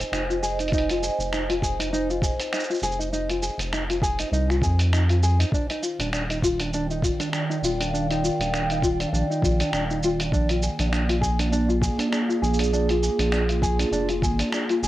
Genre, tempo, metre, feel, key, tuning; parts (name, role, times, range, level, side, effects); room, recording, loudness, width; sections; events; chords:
folktronica; 100 BPM; 4/4; swing 56% on 16ths; F dorian; A4 = 441 Hz
warbly tape-like pad; sustained chords; 0.0-14.9 s; Eb3 to Ab5; -28 LUFS; right 2 dB; chorus, built-in reverb, cassette tape
round analog bass; bass; 0.0-14.9 s; Eb1 to F2; -25 LUFS; equal
lo-fi sampler-style drum kit; drums; 0.0-14.9 s; cabasa, finger snaps, hi-hat; -30 LUFS; right 1 dB; cassette tape
tenor ukulele; arpeggios; 0.1-14.9 s; D4 to Ab4; -27 LUFS; left 2 dB; cassette tape, tape echo
electronic kick drum; drums; 0.7-14.4 s; -25 LUFS; equal; cassette tape
light reverb; home recording on cassette; -21 LUFS; side -15 dB against mid
0.0-14.9 A section
0.0 Fm7; 5.5 Ebmaj9; 10.3 Bb7